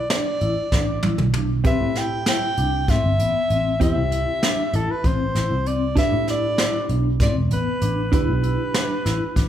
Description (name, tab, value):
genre	progressive instrumental, band music in an uneven meter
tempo	194 BPM (eighths)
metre	7/8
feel	straight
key	A minor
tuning	A4 = 441 Hz
part	breathy soprano saxophone	melody	0.0-9.5 s	A4 to G5	-25 LUFS	equal	none
part	vibraphone with medium mallets	arpeggios	0.1-9.5 s	B3 to E4	-28 LUFS	left 4 dB	none
part	jazz brush drum kit	drums	0.1-9.5 s	hi-hat, kick drum, snare drum, toms	-23 LUFS	equal	none
part	picked electric bass	bass	0.4-9.5 s	E1 to A2	-23 LUFS	equal	none
part	hollow-body jazz guitar	accompaniment	1.6-9.5 s	C4 to C5	-29 LUFS	right 6 dB	none
room	moderate large studio reverb, RT60 1.4 s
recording	band playing live in one room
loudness	-18 LUFS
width	side -10 dB against mid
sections	0.0-9.5 A section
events	drum fill 0.7-1.6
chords	0.0 E7sus4; 1.6 Am7; 6.0 G